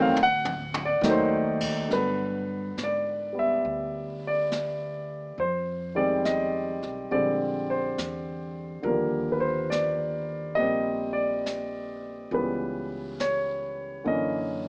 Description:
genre	jazz ballad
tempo	69 BPM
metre	4/4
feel	swing 66% on 8ths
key	unclear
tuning	A4 = 442 Hz
part	warm grand piano	accompaniment	0.0-14.7 s	C#3 to G#5	-28 LUFS	equal	none
part	upright bass	bass	0.0-14.7 s	Bb1 to Ab2	-39 LUFS	equal	none
part	jazz brush drum kit	drums	0.2-14.7 s	brushed snare drum, crash cymbal, hi-hat, kick drum, snare drum, toms	-37 LUFS	equal	none
room	light reverb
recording	small speaker sound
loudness	-28 LUFS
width	mono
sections	0.0-1.9 A section; 1.9-14.7 B section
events	drum fill 0.0-1.0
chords	0.2 D; 1.9 Gmaj9; 5.4 Fm9; 7.1 Bb13; 8.8 Ebmaj9; 12.3 C#m7b5; 14.1 F#7b13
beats	0.16 1.03 | 1.90 2.77 3.63 4.50 | 5.38 6.24 7.11 7.98 | 8.85 9.71 10.58 11.45 | 12.31 13.18 14.05

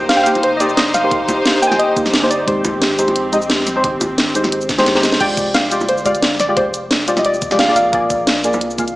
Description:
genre	liquid drum and bass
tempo	176 BPM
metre	4/4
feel	swing 53% on 16ths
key	F dorian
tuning	A4 = 440 Hz
part	soft round pluck	melody	0.0-8.2 s	C5 to Ab5	-18 LUFS	equal	chorus, diffuse ambient delay
part	deep mellow chord stab	accompaniment	0.0-8.8 s	Ab3 to F5	-18 LUFS	equal	chorus, vintage 12-bit sampler grit, diffuse ambient delay
part	dark chamber string section	sustained chords	0.0-5.2 s	C4 to C5	-20 LUFS	equal	sidechain pumping
part	warm sub bass	bass	0.0-9.0 s	Eb1 to C2	-36 LUFS	equal	none
part	garage drum kit	drums	0.1-8.9 s	cabasa, crash cymbal, hi-hat, snare drum	-18 LUFS	equal	studio reverb
part	bongos	percussion	0.4-8.6 s	none	-26 LUFS	equal	none
part	electronic kick drum	drums	1.1-8.9 s	none	-29 LUFS	equal	studio reverb
room	wet plate reverb, RT60 1.3 s, digital ambience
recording	dreamy mix soaked in reverb, small speaker sound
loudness	-13 LUFS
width	side -18 dB against mid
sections	0.0-5.2 A section; 5.2-9.0 A section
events	drop 0.0-5.2, 5.2-9.0; drum fill 4.7-5.2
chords	0.0 Eb6; 2.5 Abmaj7; 5.2 Fm69; 7.8 Bb7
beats	0.09 0.43 0.77 | 1.11 1.45 1.79 2.14 | 2.48 2.82 3.16 3.50 | 3.84 4.18 4.52 4.86 | 5.20 5.54 5.89 6.23 | 6.57 6.91 7.25 7.59 | 7.93 8.27 8.61 8.95

